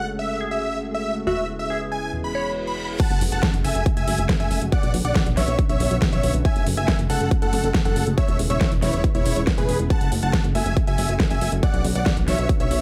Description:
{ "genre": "uplifting trance", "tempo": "139 BPM", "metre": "4/4", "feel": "straight", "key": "F# minor", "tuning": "A4 = 440 Hz", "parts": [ { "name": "big supersaw lead", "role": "melody", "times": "0.0-12.8 s", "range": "E4 to B5", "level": "-29 LUFS", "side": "equal", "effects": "sidechain pumping, digital delay" }, { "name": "glassy wavetable pluck", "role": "second line", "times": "0.0-2.9 s", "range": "F#4 to C#5", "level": "-32 LUFS", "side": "equal", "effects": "chorus, digital delay" }, { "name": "plucky analog bass", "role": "bass", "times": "0.0-12.8 s", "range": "E1 to B1", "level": "-27 LUFS", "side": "equal", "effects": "sidechain pumping" }, { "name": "lush unison pad", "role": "sustained chords", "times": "0.1-12.8 s", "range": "C#3 to F#4", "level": "-33 LUFS", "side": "equal", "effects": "chorus, sidechain pumping" }, { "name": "reverse cymbal", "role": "sound effects", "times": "2.3-3.0 s", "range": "none", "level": "-39 LUFS", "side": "equal", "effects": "none" }, { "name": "big-room dance drum kit", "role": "drums", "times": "3.0-12.8 s", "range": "crash cymbal, hi-hat, snare drum", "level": "-29 LUFS", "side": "equal", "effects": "overdrive, sidechain pumping on hats, sidechain pumping on cymbals" }, { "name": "electronic kick drum", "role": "drums", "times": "3.0-12.6 s", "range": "none", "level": "-24 LUFS", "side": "equal", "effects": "overdrive" } ], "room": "light reverb", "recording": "none", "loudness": "-22 LUFS", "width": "mono", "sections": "0.0-3.0 A section; 3.0-12.8 B section", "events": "reverse cymbal 2.3-3.0; drop 3.0-12.8", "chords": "0.0 F#madd9; 1.3 C#m7/E; 2.1 Eadd9; 3.0 F#madd9; 4.7 Bmadd9; 6.5 F#madd9; 8.2 C#m7/E; 9.9 F#madd9; 11.6 Bmadd9", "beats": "0.41 0.84 | 1.27 1.70 2.13 2.56 | 3.00 3.43 3.86 4.29 | 4.72 5.16 5.59 6.02 | 6.45 6.88 7.31 7.75 | 8.18 8.61 9.04 9.47 | 9.90 10.34 10.77 11.20 | 11.63 12.06 12.49" }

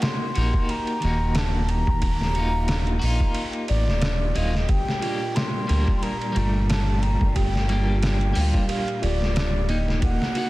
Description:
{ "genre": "trip hop", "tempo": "90 BPM", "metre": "4/4", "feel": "swing 56% on 16ths", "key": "G minor", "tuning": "A4 = 440 Hz", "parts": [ { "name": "baroque flute", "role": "melody", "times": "0.0-10.5 s", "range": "D5 to C6", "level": "-31 LUFS", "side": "left 1 dB", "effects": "tape echo" }, { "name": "electric guitar at the edge of break-up", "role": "accompaniment", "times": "0.0-10.5 s", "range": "Eb3 to Gb5", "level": "-29 LUFS", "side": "equal", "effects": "tremolo" }, { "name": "trip hop sampler-style drum kit", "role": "drums", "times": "0.0-10.5 s", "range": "hi-hat, kick drum, ride cymbal, snare drum", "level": "-26 LUFS", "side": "equal", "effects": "none" }, { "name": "bowed-like drone", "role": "texture", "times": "0.0-10.5 s", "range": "G4", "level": "-42 LUFS", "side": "right 2 dB", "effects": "none" }, { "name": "round analog bass", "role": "bass", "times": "0.4-10.2 s", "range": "D1 to D2", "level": "-23 LUFS", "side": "equal", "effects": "none" }, { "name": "clear studio string section", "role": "sustained chords", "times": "4.7-10.5 s", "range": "Bb2 to Bb3", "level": "-32 LUFS", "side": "right 1 dB", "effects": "none" }, { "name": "dark detuned synth bell", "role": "arpeggios", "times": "4.7-10.5 s", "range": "F4 to G5", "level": "-34 LUFS", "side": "right 2 dB", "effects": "chorus, phaser, tape echo" } ], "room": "little or no reverb", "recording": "dense, heavily limited modern master, vinyl crackle", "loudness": "-20 LUFS", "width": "side -18 dB against mid", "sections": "0.0-10.5 A section", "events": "none", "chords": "0.0 Ebmadd9; 4.7 Gm", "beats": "0.02 0.69 1.36 | 2.02 2.69 3.36 4.02 | 4.69 5.36 6.02 6.69 | 7.36 8.02 8.69 9.36 | 10.02" }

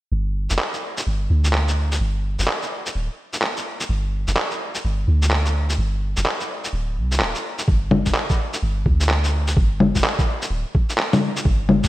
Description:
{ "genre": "future garage", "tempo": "127 BPM", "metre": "4/4", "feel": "swing 63% on 16ths", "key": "unclear", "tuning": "A4 = 439 Hz", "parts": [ { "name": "soft 808-style bass", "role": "bass", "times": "0.1-11.9 s", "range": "D1 to D2", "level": "-20 LUFS", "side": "equal", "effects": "sidechain pumping" }, { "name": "electronic shaker, handclaps and bongos", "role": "drums", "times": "0.5-11.9 s", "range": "none", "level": "-21 LUFS", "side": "left 1 dB", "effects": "gated reverb" }, { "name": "electronic kick drum", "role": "drums", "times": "7.7-11.9 s", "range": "none", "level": "-19 LUFS", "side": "equal", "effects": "none" } ], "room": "moderate lush hall reverb, RT60 1.7 s", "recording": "bright 1980s-style digital production", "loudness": "-19 LUFS", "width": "side -16 dB against mid", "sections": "0.1-7.7 A section; 7.7-11.9 B section", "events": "none", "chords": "none", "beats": "| 0.12 0.59 1.06 1.54 | 2.01 2.48 2.95 3.42 | 3.90 4.37 4.84 5.32 | 5.79 6.26 6.73 7.21 | 7.68 8.15 8.62 9.10 | 9.57 10.04 10.51 10.98 | 11.46" }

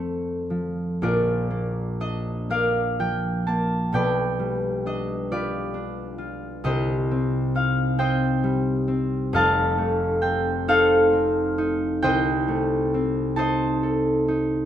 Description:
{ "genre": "classical, solo harp piece", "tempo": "34-46 BPM (dotted quarters)", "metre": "6/8", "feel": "rubato", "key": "Bb major", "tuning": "A4 = 441 Hz", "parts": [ { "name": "concert harp", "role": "solo", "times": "0.0-14.7 s", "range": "F1 to A5", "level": "-21 LUFS", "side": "equal", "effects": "none" } ], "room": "light reverb", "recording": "close, detailed microphones", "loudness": "-21 LUFS", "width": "side -10 dB against mid", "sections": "0.0-1.0 A section; 1.0-14.7 B section", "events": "none", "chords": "0.0 F; 1.0 Bb; 3.9 G7/B; 6.6 Cm; 9.3 F7; 12.0 Am7b5/C", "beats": "| 1.03 2.50 | 3.94 5.31 | 6.64 7.99 | 9.34 10.67 | 12.03 13.38" }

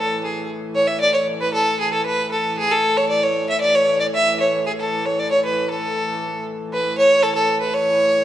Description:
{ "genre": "medieval dance", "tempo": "115 BPM", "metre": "2/4", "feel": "straight", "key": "A major", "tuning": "A4 = 441 Hz", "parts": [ { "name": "rich fiddle", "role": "melody", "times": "0.0-8.2 s", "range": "G#4 to E5", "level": "-17 LUFS", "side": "equal", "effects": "none" }, { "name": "dark hurdy-gurdy", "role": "drone", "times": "0.0-8.2 s", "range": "A2 to E3", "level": "-28 LUFS", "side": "left 1 dB", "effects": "none" } ], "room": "moderate scoring stage reverb, RT60 1.8 s", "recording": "nothing above 10.6 kHz", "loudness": "-17 LUFS", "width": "side -12 dB against mid", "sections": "0.0-6.7 A section; 6.7-8.2 B section", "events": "none", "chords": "none", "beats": "| 0.49 1.01 | 1.53 2.05 | 2.57 3.09 | 3.61 4.13 | 4.65 5.17 | 5.69 6.21 | 6.73 7.25 | 7.77" }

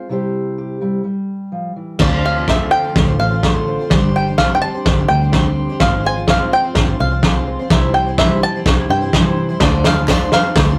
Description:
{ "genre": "indie folk with a building arrangement", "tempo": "126 BPM", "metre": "4/4", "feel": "straight", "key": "unclear", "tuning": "A4 = 440 Hz", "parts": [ { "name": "fingerpicked steel-string acoustic guitar", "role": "accompaniment", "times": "0.0-9.6 s", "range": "A2 to C5", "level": "-25 LUFS", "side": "equal", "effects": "none" }, { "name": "bluegrass banjo", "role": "melody", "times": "2.0-10.8 s", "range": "D5 to A5", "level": "-21 LUFS", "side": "equal", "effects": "none" }, { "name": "picked twelve-string acoustic guitar", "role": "accompaniment", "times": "2.0-10.8 s", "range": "C3 to C5", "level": "-25 LUFS", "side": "equal", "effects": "none" }, { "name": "fingered electric bass", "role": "bass", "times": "2.0-10.7 s", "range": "G1 to G2", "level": "-22 LUFS", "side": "equal", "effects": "none" }, { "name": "loose indie drum kit", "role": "drums", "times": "2.0-10.7 s", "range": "crash cymbal, kick drum, snare drum", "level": "-18 LUFS", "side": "equal", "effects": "none" }, { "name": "glockenspiel with soft plastic mallets", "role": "second line", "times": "9.6-10.8 s", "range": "A5", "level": "-34 LUFS", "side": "equal", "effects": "none" }, { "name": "tambourine", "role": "percussion", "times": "9.8-10.7 s", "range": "none", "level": "-41 LUFS", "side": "equal", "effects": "none" }, { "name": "group handclap", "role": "percussion", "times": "10.1-10.2 s", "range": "none", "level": "-34 LUFS", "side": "equal", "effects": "none" } ], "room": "moderate studio reverb, RT60 0.5 s", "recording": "rough rehearsal-room recording", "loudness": "-16 LUFS", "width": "mono", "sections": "0.0-2.0 A section; 2.0-10.8 B section", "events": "build-up 2.0-10.8; drum fill 2.0-10.8", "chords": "0.1 C; 1.0 Em; 2.0 Dm7; 3.9 Gsus4; 5.8 Fm/Ab; 7.7 C; 9.6 Dm7", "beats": "| 0.09 0.57 1.05 1.52 | 2.00 2.48 2.96 3.43 | 3.91 4.39 4.86 5.34 | 5.81 6.29 6.76 7.24 | 7.71 8.19 8.66 9.14 | 9.61 10.09 10.56" }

